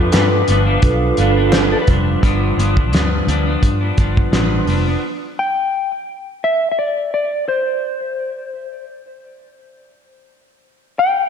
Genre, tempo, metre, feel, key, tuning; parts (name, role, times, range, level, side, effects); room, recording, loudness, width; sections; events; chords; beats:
indie pop, bedroom pop; 86 BPM; 4/4; swing 55% on 16ths; A4 = 440 Hz
mellow electric guitar; melody; 0.0-11.3 s; G4 to G5; -19 LUFS; left 2 dB; wide subtle chorus, tape echo
clean electric guitar; accompaniment; 0.0-5.0 s; G2 to D4; -20 LUFS; left 1 dB; wide subtle chorus, vibrato effect
mellow tonewheel organ; accompaniment; 0.0-1.8 s; D4 to B4; -20 LUFS; right 8 dB; fast rotary speaker
granular cloud pad; sustained chords; 0.0-2.2 s; B4 to D6; -26 LUFS; equal; built-in reverb
vintage muted fingered electric bass; bass; 0.0-4.9 s; F1 to G2; -18 LUFS; equal
cloth-damped thuddy drum kit; drums; 0.1-4.9 s; hi-hat, kick drum, snare drum; -17 LUFS; equal
group handclap; percussion; 0.1-1.7 s; -28 LUFS; right 5 dB
moderate lush hall reverb, RT60 1.7 s, small room ambience; dreamy mix soaked in reverb; -14 LUFS; side -8 dB against mid
0.0-2.2 A section; 2.2-5.0 B section; 5.0-11.3 C section
0.0 G7; 5.0 N.C.
0.13 0.83 1.53 | 2.23 2.92 3.62 4.32 | 5.02 5.72 6.42 7.12 | 7.83 8.53 9.23 9.93 | 10.63